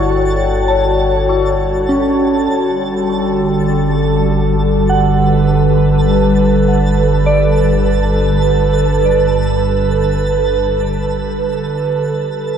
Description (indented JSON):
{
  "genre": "ambient",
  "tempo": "50 BPM",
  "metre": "4/4",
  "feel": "straight",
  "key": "G lydian",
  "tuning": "A4 = 442 Hz",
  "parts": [
    { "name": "glassy FM pad", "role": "sustained chords", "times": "0.0-12.6 s", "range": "D3 to C#5", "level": "-14 LUFS", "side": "right 1 dB", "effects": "ensemble chorus, built-in reverb, shimmer reverb" },
    { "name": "soft synth bell", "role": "arpeggios", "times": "0.0-12.6 s", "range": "C#4 to C#6", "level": "-20 LUFS", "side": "right 1 dB", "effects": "chorus, phaser, shimmer reverb, ping-pong delay" },
    { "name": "deep rumbling drone", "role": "bass", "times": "0.0-12.6 s", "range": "G1", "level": "-19 LUFS", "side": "equal", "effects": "built-in reverb" },
    { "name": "overtone-sweeping drone", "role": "drone", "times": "0.0-12.6 s", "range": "D3 to G3", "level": "-26 LUFS", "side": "left 1 dB", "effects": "chorus, built-in reverb" },
    { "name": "twinkling granular texture", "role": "texture", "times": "0.0-12.6 s", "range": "A5", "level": "-27 LUFS", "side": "right 2 dB", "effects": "built-in reverb, shimmer reverb" }
  ],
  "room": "wet concert hall reverb, RT60 2.1 s",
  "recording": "none",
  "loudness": "-12 LUFS",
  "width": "side -8 dB against mid",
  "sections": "0.0-12.6 A section",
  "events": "fade-out on synth drone 0.0-12.6; fade-out on synth texture 0.0-12.6; fade-out 8.9-12.6",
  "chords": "0.0 F#m/G; 2.5 G; 12.0 N.C.",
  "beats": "0.08 1.28 | 2.48 3.68 4.88 6.08 | 7.26 8.46 9.64 10.83 | 12.00"
}